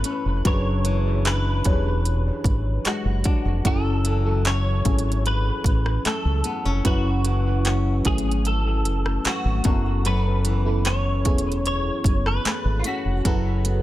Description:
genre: contemporary R&B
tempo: 75 BPM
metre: 4/4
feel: straight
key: F# minor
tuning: A4 = 440 Hz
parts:
  - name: direct-recorded clean electric guitar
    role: melody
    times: 0.0-13.8 s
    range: E#4 to C#5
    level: -29 LUFS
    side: equal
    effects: ensemble chorus, dub echo
  - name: FM electric piano with auto-pan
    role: accompaniment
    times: 0.0-13.8 s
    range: F#3 to C#5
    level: -29 LUFS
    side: equal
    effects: phaser, dub echo
  - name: flamenco guitar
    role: arpeggios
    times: 0.0-13.8 s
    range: F#2 to A4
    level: -30 LUFS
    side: left 4 dB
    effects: dub echo
  - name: trap drum kit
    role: drums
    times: 0.0-13.8 s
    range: handclaps, hi-hat, kick drum, rim click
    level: -23 LUFS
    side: equal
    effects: none
  - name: glassy wavetable pluck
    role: texture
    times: 0.0-4.0, 9.2-13.6 s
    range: B5 to B6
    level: -41 LUFS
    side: equal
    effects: none
  - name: deep dub fingered electric bass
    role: bass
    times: 0.3-13.8 s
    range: E1 to C#2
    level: -22 LUFS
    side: equal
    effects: none
room: little or no reverb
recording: echo-heavy mix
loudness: -20 LUFS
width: side -15 dB against mid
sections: 0.0-13.8 A section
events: none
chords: 0.5 E9; 3.7 F#m7; 9.7 F#m11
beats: | 0.45 1.25 2.05 2.85 | 3.65 4.45 5.25 6.05 | 6.85 7.65 8.45 9.25 | 10.05 10.85 11.65 12.45 | 13.25

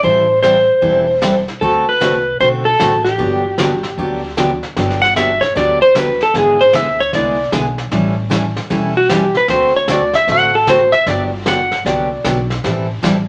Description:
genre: country, western swing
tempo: 152 BPM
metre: 4/4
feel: swing 65% on 8ths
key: G major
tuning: A4 = 439 Hz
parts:
  - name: clean lap steel guitar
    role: melody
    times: 0.0-12.5 s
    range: F#4 to F#5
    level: -15 LUFS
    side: equal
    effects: none
  - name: picked steel-string acoustic guitar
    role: accompaniment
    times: 0.0-13.1 s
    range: D3 to A4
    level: -21 LUFS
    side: equal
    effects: none
  - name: upright bass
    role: bass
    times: 0.0-13.3 s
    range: E1 to D2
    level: -27 LUFS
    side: equal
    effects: none
  - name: vintage brush drum kit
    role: drums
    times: 0.0-13.3 s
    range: brushed snare drum, hi-hat, kick drum, snare drum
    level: -26 LUFS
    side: equal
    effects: none
room: wet studio reverb, RT60 0.7 s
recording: none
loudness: -14 LUFS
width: mono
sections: 0.0-4.8 A section; 4.8-13.3 B section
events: electric slide guitar solo 4.8-13.3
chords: 0.0 Am7; 1.6 D7; 3.2 Gmaj7; 6.3 E7/G#; 7.9 A7; 9.5 D7; 11.1 Gmaj7; 12.6 Am7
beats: | 0.04 0.44 0.83 1.23 | 1.62 2.02 2.41 2.80 | 3.20 3.59 3.99 4.38 | 4.77 5.17 5.56 5.96 | 6.35 6.74 7.14 7.53 | 7.92 8.32 8.71 9.10 | 9.50 9.89 10.28 10.68 | 11.07 11.46 11.86 12.25 | 12.64 13.03

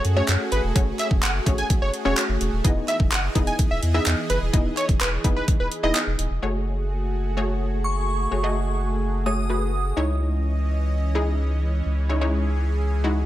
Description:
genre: dance-pop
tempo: 127 BPM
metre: 4/4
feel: straight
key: unclear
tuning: A4 = 440 Hz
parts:
  - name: supersaw pad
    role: sustained chords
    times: 0.0-13.3 s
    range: E3 to D#5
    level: -31 LUFS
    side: right 2 dB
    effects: sidechain pumping
  - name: saturated sub bass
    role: bass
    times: 0.0-13.3 s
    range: D#1 to F#2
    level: -24 LUFS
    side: equal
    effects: sidechain pumping
  - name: pop drum kit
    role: drums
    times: 0.0-6.3 s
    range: handclaps, hi-hat, kick drum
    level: -22 LUFS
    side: equal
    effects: overdrive
  - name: plucky unison lead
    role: melody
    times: 0.2-6.0 s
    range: B4 to G#5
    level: -27 LUFS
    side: right 1 dB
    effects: sidechain pumping
  - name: wide unison pluck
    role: accompaniment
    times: 0.2-13.2 s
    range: G#3 to D#5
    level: -28 LUFS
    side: left 2 dB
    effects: sidechain pumping
  - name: group handclap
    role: percussion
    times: 0.3-6.1 s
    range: none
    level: -36 LUFS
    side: right 5 dB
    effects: none
  - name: shimmering bell with halo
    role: melody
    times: 7.8-9.9 s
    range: C#6 to D#6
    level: -30 LUFS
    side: equal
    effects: ensemble chorus, tape echo
room: little or no reverb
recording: none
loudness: -20 LUFS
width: side -14 dB against mid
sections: 0.0-6.4 A section; 6.4-13.3 B section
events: drop 0.0-6.4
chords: 0.0 F#madd9; 2.6 Emaj7; 6.4 F#madd9; 10.0 C#madd9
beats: 0.28 | 0.76 1.23 1.70 2.17 | 2.65 3.12 3.59 4.06 | 4.54 5.01 5.48 5.95 | 6.43 6.90 7.37 7.84 | 8.32 8.79 9.26 9.73 | 10.21 10.68 11.15 11.62 | 12.10 12.57 13.04

